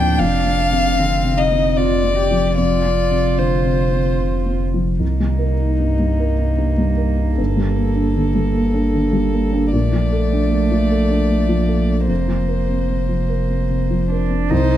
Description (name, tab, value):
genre	neoclassical piano and strings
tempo	76 BPM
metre	3/4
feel	rubato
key	unclear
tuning	A4 = 440 Hz
part	rich violin	melody	0.0-14.8 s	Eb4 to G5	-23 LUFS	left 4 dB	none
part	warm cello	second line	0.0-14.8 s	A3 to G4	-25 LUFS	right 7 dB	slapback echo
part	felt-muted upright piano	accompaniment	0.0-14.8 s	C2 to Bb4	-20 LUFS	equal	none
part	saturated sub bass	bass	0.0-14.8 s	F1 to D2	-20 LUFS	equal	none
room	light reverb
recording	dark, warm production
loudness	-15 LUFS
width	side -12 dB against mid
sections	0.0-5.0 A section; 5.0-14.5 B section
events	none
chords	0.2 F5; 5.0 Cm7; 7.4 Gmadd9; 9.7 Bbmaj7; 12.1 Fsus4